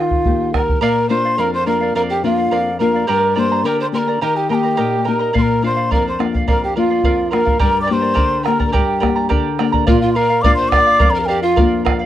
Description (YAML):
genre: andean folk, Andean ensemble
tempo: 106 BPM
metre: 2/4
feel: straight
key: unclear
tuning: A4 = 440 Hz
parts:
  - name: mellow large quena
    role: melody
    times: 0.0-11.8 s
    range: F5 to D6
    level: -19 LUFS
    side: left 2 dB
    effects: none
  - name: polished pan flute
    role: second line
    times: 0.0-11.8 s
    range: F4 to D5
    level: -20 LUFS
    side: right 3 dB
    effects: none
  - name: nylon-string guitar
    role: accompaniment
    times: 0.0-12.1 s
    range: F2 to G4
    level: -20 LUFS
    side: left 5 dB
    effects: none
  - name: bombo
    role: percussion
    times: 0.1-0.8, 5.4-12.0 s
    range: none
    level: -18 LUFS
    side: right 1 dB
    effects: none
  - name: charango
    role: accompaniment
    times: 0.8-12.1 s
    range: G4 to Bb5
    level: -22 LUFS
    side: right 5 dB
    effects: none
room: light reverb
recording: dry, close 1970s-style studio recording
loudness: -13 LUFS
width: side -12 dB against mid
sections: 0.8-9.9 A section; 9.9-12.1 B section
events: none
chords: 0.0 Eb; 0.8 Bb; 3.1 Gm; 4.2 Eb; 5.3 Bb; 7.6 Gm; 9.9 Bb